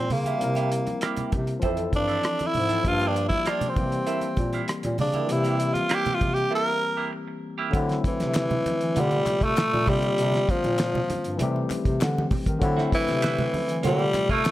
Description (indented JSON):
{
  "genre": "lush 1970s-style soul",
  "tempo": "98 BPM",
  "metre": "4/4",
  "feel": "straight",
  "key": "unclear",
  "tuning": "A4 = 441 Hz",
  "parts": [
    { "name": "raspy tenor saxophone", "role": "melody", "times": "0.0-14.5 s", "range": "E3 to Bb4", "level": "-25 LUFS", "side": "equal", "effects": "none" },
    { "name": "barky tine electric piano", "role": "accompaniment", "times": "0.0-14.5 s", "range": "Bb2 to Bb4", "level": "-30 LUFS", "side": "left 3 dB", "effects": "overdrive" },
    { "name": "mellow bass clarinet", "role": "bass", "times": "0.0-14.4 s", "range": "F2 to E3", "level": "-28 LUFS", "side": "equal", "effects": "none" },
    { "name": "cloth-damped thuddy drum kit", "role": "drums", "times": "0.1-14.5 s", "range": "hi-hat, kick drum, rim click, snare drum", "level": "-28 LUFS", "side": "equal", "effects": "none" },
    { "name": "congas", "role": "percussion", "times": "0.1-14.5 s", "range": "none", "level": "-33 LUFS", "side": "right 3 dB", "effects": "none" },
    { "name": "semi-hollow electric guitar", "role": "riff", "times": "0.3-7.8, 12.6-14.5 s", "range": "Bb3 to C5", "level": "-32 LUFS", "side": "right 6 dB", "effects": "wah" },
    { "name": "group handclap", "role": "percussion", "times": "8.3-14.5 s", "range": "none", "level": "-39 LUFS", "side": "left 7 dB", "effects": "none" }
  ],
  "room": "light reverb, studio reverb",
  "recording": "none",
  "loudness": "-22 LUFS",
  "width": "side -14 dB against mid",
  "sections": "0.0-7.7 A section; 7.7-14.5 B section",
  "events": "tenor saxophone solo 0.0-7.7; break 6.5-7.7",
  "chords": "0.0 C7; 1.6 Fmaj7; 2.9 Gm7; 3.8 C7; 7.7 D9; 9.0 Gm11; 9.9 C9sus4; 11.4 Am7/C; 12.6 D9; 13.8 Gm11"
}